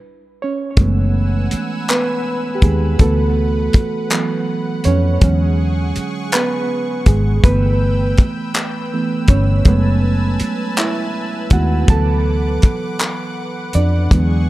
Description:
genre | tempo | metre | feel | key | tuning
slow six-eight R&B | 54 BPM (dotted quarters) | 6/8 | straight | F# minor | A4 = 440 Hz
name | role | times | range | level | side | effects
bright reed electric piano | accompaniment | 0.4-14.5 s | D3 to A5 | -19 LUFS | right 3 dB | dub echo
lush unison pad | sustained chords | 0.8-14.5 s | G#4 to E6 | -28 LUFS | left 2 dB | chorus
vintage muted fingered electric bass | bass | 0.8-14.5 s | F#1 to E#2 | -16 LUFS | equal | none
cloth-damped thuddy drum kit | drums | 0.8-14.3 s | handclaps, hi-hat, kick drum | -13 LUFS | equal | none
room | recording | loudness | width
light reverb, small room reverb | echo-heavy mix | -14 LUFS | side -17 dB against mid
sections
0.8-14.5 A section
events
stop 0.0-0.8; reed electric piano solo 0.8-14.5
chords
0.0 N.C.; 0.8 F#m11; 3.0 D6; 5.2 E13; 7.4 G6; 9.7 F#m11; 11.9 D6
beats
| 0.77 1.88 | 2.99 4.10 | 5.21 6.33 | 7.44 8.55 | 9.66 10.77 | 11.88 12.99 | 14.10

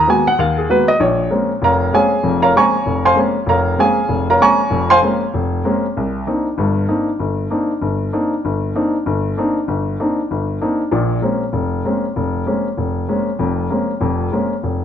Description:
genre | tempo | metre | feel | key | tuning
jazz | 194 BPM | 4/4 | swing 60% on 8ths | C minor from 6.0 s | A4 = 442 Hz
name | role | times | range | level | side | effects
warm baby grand piano | solo | 0.0-14.8 s | E#1 to C#6 | -14 LUFS | equal | none
room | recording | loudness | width
moderate large studio reverb, RT60 1.2 s | worn, warbling old tape, cassette tape, warbly pitch drift, nothing above 7.9 kHz | -15 LUFS | side -9 dB against mid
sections
0.0-6.0 A section; 6.0-14.8 B section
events
none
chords
0.0 G#m9; 1.0 A#m9; 6.0 Cm9; 10.9 Bbm9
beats
0.07 0.38 0.69 | 0.99 1.30 1.61 1.92 | 2.23 2.54 2.85 3.16 | 3.47 3.78 4.09 4.40 | 4.71 5.02 5.33 5.64 | 5.95 6.26 6.57 6.88 | 7.19 7.50 7.81 8.12 | 8.44 8.74 9.06 9.37 | 9.68 9.99 10.30 10.61 | 10.91 11.22 11.53 11.84 | 12.15 12.46 12.77 13.08 | 13.39 13.70 14.01 14.32 | 14.63

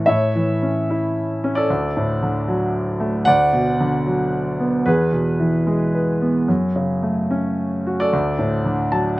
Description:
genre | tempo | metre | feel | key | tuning
classical, lyrical solo piano | 112 BPM | 3/4 | rubato | A major | A4 = 439 Hz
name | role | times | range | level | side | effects
clear grand piano | solo | 0.0-9.2 s | D2 to A5 | -17 LUFS | equal | none
room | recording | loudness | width
light reverb | close, detailed microphones | -17 LUFS | side -18 dB against mid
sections
0.1-9.2 A section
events
grand piano fill 5.7-6.5, 8.7-9.2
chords
0.1 A; 1.7 D; 3.3 Bm/D; 4.9 E; 6.5 F#m; 8.1 D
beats
| 0.07 0.62 1.16 | 1.69 2.22 2.73 | 3.27 3.80 4.33 | 4.86 5.40 5.94 | 6.49 7.04 7.59 | 8.13 8.66 9.18

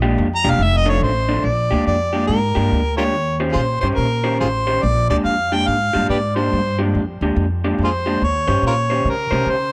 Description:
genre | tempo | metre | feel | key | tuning
electric blues shuffle | 142 BPM | 4/4 | swing 64% on 8ths | Bb mixolydian | A4 = 440 Hz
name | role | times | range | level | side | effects
electric guitar through a small old amp | riff | 0.0-9.6 s | F2 to C5 | -24 LUFS | equal | spring reverb
upright bass | bass | 0.0-9.7 s | E1 to Db3 | -23 LUFS | equal | none
warm harmonica | melody | 0.4-9.7 s | F4 to Bb5 | -22 LUFS | equal | overdrive
room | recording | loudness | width
light reverb | none | -18 LUFS | mono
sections
0.0-1.5 A section; 1.5-9.7 B section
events
harmonica solo 0.0-1.5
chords
0.0 Bb6; 0.6 F6; 1.5 Bb6; 3.1 Eb6; 4.8 Bb13; 8.2 Eb6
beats
0.19 0.61 1.03 | 1.46 1.88 2.30 2.72 | 3.14 3.56 3.99 4.41 | 4.83 5.25 5.67 6.10 | 6.52 6.94 7.36 7.78 | 8.21 8.63 9.05 9.47

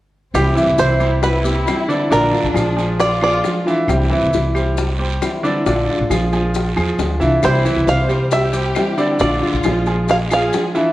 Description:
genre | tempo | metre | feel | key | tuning
latin, Cuban son and guajira | 135 BPM | 4/4 | straight | C major | A4 = 440 Hz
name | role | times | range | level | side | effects
bluegrass banjo | melody | 0.3-3.6, 7.4-10.7 s | G4 to F5 | -19 LUFS | right 2 dB | none
dark studio violin section | second line | 0.3-3.6, 7.4-10.7 s | C4 to C5 | -24 LUFS | left 1 dB | none
nylon-string guitar | accompaniment | 0.3-10.9 s | C3 to F4 | -23 LUFS | left 2 dB | none
bright concert grand piano | arpeggios | 0.3-10.9 s | D3 to E5 | -20 LUFS | right 1 dB | none
upright bass | bass | 0.3-10.5 s | Bb1 to E2 | -20 LUFS | equal | none
bongos | percussion | 0.3-10.8 s | none | -26 LUFS | left 5 dB | none
claves | percussion | 0.3-10.5 s | none | -32 LUFS | equal | none
guiro | percussion | 0.3-10.9 s | none | -33 LUFS | right 5 dB | none
maracas | percussion | 0.3-10.9 s | none | -36 LUFS | left 5 dB | none
room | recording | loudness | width
wet large studio reverb, RT60 1.3 s | worn, warbling old tape, cassette tape, warbly pitch drift, faint mains hum | -14 LUFS | side -15 dB against mid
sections
0.3-10.9 A section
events
none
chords
0.3 C; 2.1 Bb7; 3.9 C; 5.7 Bb7; 7.4 C; 9.2 Bb7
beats
| 0.34 0.78 1.23 1.67 | 2.11 2.55 3.00 3.44 | 3.88 4.33 4.77 5.21 | 5.66 6.10 6.54 6.99 | 7.43 7.88 8.32 8.76 | 9.21 9.65 10.09 10.53

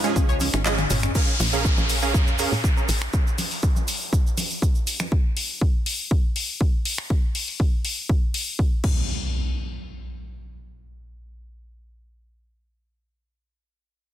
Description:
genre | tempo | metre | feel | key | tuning
progressive house | 121 BPM | 4/4 | straight | unclear | A4 = 438 Hz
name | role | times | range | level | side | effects
wide unison pluck | melody | 0.0-1.1 s | F4 | -41 LUFS | right 1 dB | none
soft synth bell | second line | 0.0-1.1 s | F5 | -43 LUFS | equal | none
lush unison pad | sustained chords | 0.0-1.1 s | Ab2 to Eb4 | -38 LUFS | right 2 dB | none
tight sequenced synth | arpeggios | 0.0-1.1 s | Db4 to Eb5 | -31 LUFS | left 2 dB | chorus, phaser, sidechain pumping, dub echo
supersaw stab | stabs | 0.0-2.8 s | F3 to Bb5 | -28 LUFS | right 5 dB | sidechain pumping, low-pass filter, dub echo
house drum kit | drums | 0.0-8.9 s | crash cymbal, finger snaps, handclaps, hi-hat, toms | -28 LUFS | left 3 dB | sidechain pumping on hats, soft clipping on snare, sidechain pumping on toms, sidechain pumping on cymbals
tube shaker | percussion | 0.0-5.1 s | none | -34 LUFS | right 6 dB | none
tight sequencer bass | bass | 0.2-3.1 s | Ab1 to Bb2 | -26 LUFS | equal | sidechain pumping
electronic kick drum | drums | 0.2-8.9 s | none | -21 LUFS | equal | none
congas | percussion | 0.4-5.1 s | none | -34 LUFS | right 1 dB | overdrive, sidechain pumping on perc, sidechain pumping on toms
downlifter and impact | sound effects | 1.2-5.1, 8.8-11.9 s | none | -30 LUFS | equal | none
room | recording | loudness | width
digital ambience | dense, heavily limited modern master | -20 LUFS | side -12 dB against mid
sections
0.0-1.2 A section; 1.2-9.1 B section; 9.1-13.1 C section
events
drop 0.0-1.2; kick drops out 0.7-1.2; band accent 0.7; drum fill 0.8-1.2; filter sweep on analog synth bass 1.2-3.1; filter sweep on supersaw synth 1.2-3.1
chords
0.0 Db; 1.2 Bbm7; 5.1 N.C.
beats
0.16 0.66 | 1.15 1.65 2.14 2.64 | 3.13 3.63 4.13 4.62 | 5.12 5.61 6.11 6.61 | 7.10 7.60 8.09 8.59 | 9.09 9.58 10.08 10.57 | 11.07 11.56

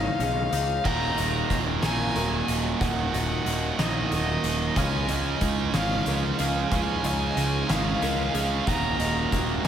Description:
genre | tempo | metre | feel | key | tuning
post-rock | 61 BPM (dotted quarters) | 6/8 | straight | Eb minor | A4 = 439 Hz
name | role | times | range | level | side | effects
warm violin | melody | 0.0-9.7 s | Eb5 to Bb5 | -30 LUFS | left 2 dB | analog delay
muted studio string section | sustained chords | 0.0-9.7 s | Eb3 to Gb4 | -38 LUFS | left 2 dB | none
twelve-string electric guitar | arpeggios | 0.0-9.7 s | Eb2 to Ab4 | -34 LUFS | left 3 dB | spring reverb, analog delay
fuzz picked electric bass | bass | 0.0-9.7 s | Eb1 to Db2 | -29 LUFS | equal | overdrive
felt-muted upright piano | arpeggios | 0.2-9.6 s | Ab4 to Gb5 | -39 LUFS | right 2 dB | lush chorus, analog delay
oversized low-tuned drum kit | drums | 0.2-9.7 s | crash cymbal, hi-hat, kick drum, snare drum | -30 LUFS | left 1 dB | none
tight distorted guitar | riff | 0.8-9.7 s | Eb2 to Db4 | -28 LUFS | right 8 dB | distortion
room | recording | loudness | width
moderate huge ambient reverb, RT60 8.5 s | dreamy mix soaked in reverb | -23 LUFS | side -9 dB against mid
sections
0.8-9.7 A section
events
none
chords
0.0 Dbadd9; 0.8 Ebm; 4.8 Dbadd9; 8.7 Ebm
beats
| 0.85 1.83 | 2.81 3.79 | 4.76 5.74 | 6.72 7.70 | 8.68 9.65

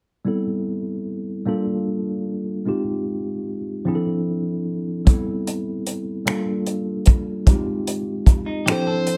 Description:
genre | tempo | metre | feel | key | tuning
slow six-eight R&B | 50 BPM (dotted quarters) | 6/8 | straight | unclear | A4 = 438 Hz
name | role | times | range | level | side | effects
tine electric piano | accompaniment | 0.2-9.2 s | F3 to A4 | -26 LUFS | equal | none
warm soul drum kit | drums | 5.1-9.2 s | finger snaps, hi-hat, kick drum | -17 LUFS | equal | none
semi-hollow electric guitar | second line | 8.5-9.2 s | Eb4 to A4 | -31 LUFS | equal | plate reverb
dark smooth lead guitar | melody | 8.7-9.2 s | C5 | -26 LUFS | equal | overdrive
room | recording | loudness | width
light reverb | none | -22 LUFS | mono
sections
0.3-9.2 A section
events
none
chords
0.3 Am9; 1.5 Gm9; 2.7 Fm9; 3.9 Dm9; 5.1 Am9; 6.3 Gm9; 7.5 Fm9; 8.7 Dm9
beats
| 0.27 1.47 | 2.67 3.87 | 5.07 6.27 | 7.47 8.67

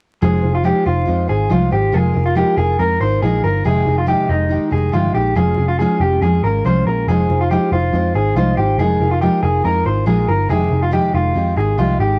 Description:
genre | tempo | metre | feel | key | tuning
indie pop | 140 BPM | 4/4 | straight | unclear | A4 = 440 Hz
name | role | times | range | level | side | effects
fingerpicked steel-string acoustic guitar | accompaniment | 0.2-12.2 s | F2 to C5 | -22 LUFS | equal | cassette tape
electric guitar through a small old amp | arpeggios | 0.2-12.2 s | Eb4 to C5 | -21 LUFS | equal | cassette tape
vintage muted picked electric bass | bass | 0.2-12.2 s | F1 to F2 | -20 LUFS | equal | none
room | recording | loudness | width
moderate booth ambience, RT60 0.2 s | home recording on cassette, vinyl crackle | -16 LUFS | mono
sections
0.2-12.2 A section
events
none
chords
0.2 Fm7; 1.9 Abmaj7/F; 5.4 Db/F; 7.1 Fm7; 8.8 Ebsus4/F; 10.5 Abmaj7/F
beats
| 0.22 0.65 1.08 1.50 | 1.93 2.36 2.79 3.22 | 3.65 4.08 4.50 4.93 | 5.36 5.79 6.22 6.65 | 7.08 7.50 7.93 8.36 | 8.79 9.22 9.64 10.07 | 10.50 10.93 11.36 11.78

